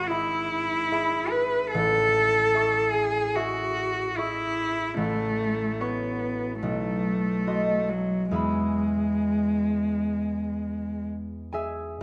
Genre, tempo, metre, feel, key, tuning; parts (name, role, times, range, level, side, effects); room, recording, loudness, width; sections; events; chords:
classical, romantic duo for cello and harp; 64-75 BPM; 4/4; rubato; E major; A4 = 441 Hz
rich cello; melody; 0.0-11.1 s; F#3 to B4; -27 LUFS; equal
concert harp; accompaniment; 0.0-12.0 s; G#1 to C#6; -32 LUFS; equal
wet scoring stage reverb, RT60 1.6 s; dark, warm production; -26 LUFS; mono
0.0-12.0 A section
0.0 E/G#; 1.7 Amaj7; 5.0 F#m/A; 6.6 B7b9; 8.4 E